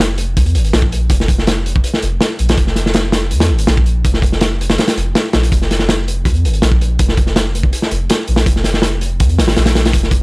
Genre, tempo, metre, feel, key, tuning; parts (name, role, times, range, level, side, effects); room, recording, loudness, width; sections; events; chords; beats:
drum and bass, jungle; 163 BPM; 4/4; straight; A4 = 442 Hz
soft dub sub bass; bass; 0.0-10.2 s; F1 to F2; -16 LUFS; equal
crunchy breakbeat drum kit; drums; 0.0-10.2 s; hi-hat, kick drum, snare drum; -13 LUFS; equal
little or no reverb; dry, gritty hardware recording, transformer saturation; -12 LUFS; side -29 dB against mid
0.0-10.2 A section
0.00 0.36 0.73 | 1.10 1.47 1.84 2.21 | 2.57 2.94 3.31 3.68 | 4.04 4.41 4.78 5.15 | 5.52 5.89 6.25 6.62 | 6.99 7.36 7.73 8.09 | 8.46 8.83 9.20 9.57 | 9.94